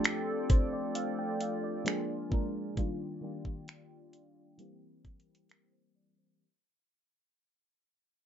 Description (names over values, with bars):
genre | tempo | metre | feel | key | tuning
contemporary R&B | 66 BPM | 4/4 | straight | unclear | A4 = 439 Hz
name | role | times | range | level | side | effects
FM electric piano with soft pad layer | accompaniment | 0.0-6.6 s | Eb3 to G5 | -35 LUFS | equal | chorus, low-pass filter
hollow soft pad | sustained chords | 0.0-6.4 s | E4 to Ab5 | -42 LUFS | right 1 dB | chorus, sidechain pumping, low-pass filter
smooth R&B drum kit | drums | 0.0-5.7 s | finger snaps, hi-hat, kick drum | -30 LUFS | equal | none
room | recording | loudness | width
light reverb | nothing above 7.7 kHz | -31 LUFS | side -10 dB against mid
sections
0.0-6.4 A section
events
fade-out 0.0-6.4; filter sweep 0.0-6.4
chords
0.0 F69; 1.9 Bb7; 2.8 Ebmaj9; 4.6 C7